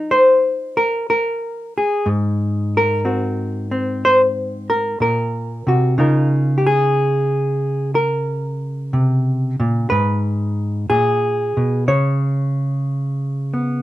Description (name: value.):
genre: solo jazz.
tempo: 61 BPM.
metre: 4/4.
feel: swing 68% on 8ths.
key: Db major.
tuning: A4 = 437 Hz.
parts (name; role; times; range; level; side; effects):
hollow-body jazz guitar; solo; 0.0-13.8 s; Ab2 to Db5; -16 LUFS; equal; none.
room: light reverb.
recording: none.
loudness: -16 LUFS.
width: side -14 dB against mid.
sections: 0.0-13.8 A section.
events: none.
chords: 0.0 F7sus4; 2.1 Ab7; 6.0 Db69; 9.9 Abm; 11.9 Cbsus2/Db.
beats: 0.10 1.08 | 2.06 3.04 4.02 5.00 | 5.98 6.96 7.94 8.93 | 9.91 10.89 11.88 12.86.